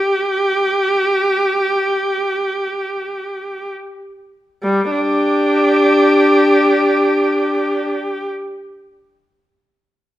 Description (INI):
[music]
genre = classical, free, expressive piece for unaccompanied viola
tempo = free time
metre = none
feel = none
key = unclear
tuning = A4 = 440 Hz
[part]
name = rich viola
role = solo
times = 0.0-8.3 s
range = G3 to G4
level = -14 LUFS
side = equal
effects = none
[sound]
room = wet recital hall reverb, RT60 1.4 s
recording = minimal, uncompressed stereo recording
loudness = -14 LUFS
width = side -13 dB against mid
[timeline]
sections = 0.0-4.7 A section; 4.7-9.2 B section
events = slowing down 0.0-4.7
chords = none